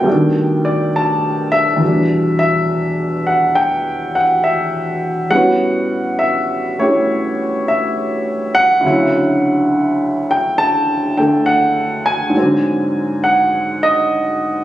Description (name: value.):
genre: solo jazz.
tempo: 68 BPM.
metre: 4/4.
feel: swing 68% on 8ths.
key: E minor.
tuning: A4 = 440 Hz.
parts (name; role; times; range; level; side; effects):
warm baby grand piano; solo; 0.0-14.6 s; D2 to A5; -13 LUFS; equal; none.
room: light reverb.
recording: recorded on a phone in the room, studio reverb.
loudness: -13 LUFS.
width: side -13 dB against mid.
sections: 0.0-1.8 A section; 1.8-14.6 B section.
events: grand piano solo 0.0-1.8.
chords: 0.1 B7alt; 1.8 Em7; 5.3 A13; 8.8 Dmaj9; 12.3 G#7#11.